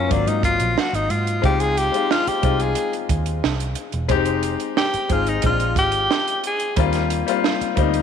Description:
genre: lush 1970s-style soul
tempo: 90 BPM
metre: 4/4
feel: straight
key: unclear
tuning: A4 = 438 Hz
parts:
  - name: warm tenor saxophone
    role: melody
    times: 0.0-6.8 s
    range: Db4 to Ab4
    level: -22 LUFS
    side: left 1 dB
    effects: tape echo
  - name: warm baby grand piano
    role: accompaniment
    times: 0.0-8.0 s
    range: Gb3 to Ab4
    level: -23 LUFS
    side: left 10 dB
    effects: none
  - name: vintage muted fingered electric bass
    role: bass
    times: 0.0-8.0 s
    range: E1 to Ab2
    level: -24 LUFS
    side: right 1 dB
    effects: none
  - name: compact cocktail drum kit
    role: drums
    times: 0.1-8.0 s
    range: hi-hat, kick drum, snare drum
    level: -24 LUFS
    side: right 5 dB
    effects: none
room: moderate echo chamber reverb, RT60 2.2 s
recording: 1960s-style stereo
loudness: -18 LUFS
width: side -7 dB against mid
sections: 0.0-8.0 A section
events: tenor saxophone solo 0.0-8.0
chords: 0.1 Ab13; 1.4 Dbmaj9; 4.1 Fm9; 5.4 Bb9; 6.8 Eb6

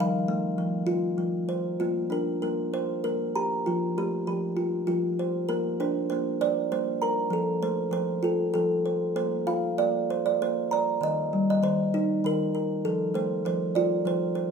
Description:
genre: children's music, lullaby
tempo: 98 BPM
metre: 3/4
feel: straight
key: Bb major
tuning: A4 = 440 Hz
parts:
  - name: kalimba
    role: solo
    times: 0.0-14.5 s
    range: Eb3 to Bb5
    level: -24 LUFS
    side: right 1 dB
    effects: none
room: moderate recital hall reverb, RT60 1.5 s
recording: minimal, uncompressed stereo recording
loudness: -24 LUFS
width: side -6 dB against mid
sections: 0.0-1.8 A section; 1.8-14.5 B section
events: none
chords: 0.0 F; 1.8 Bbadd9; 3.7 F; 5.5 Bbadd9; 7.3 F; 9.2 Bbsus2; 11.0 Eb; 12.8 F

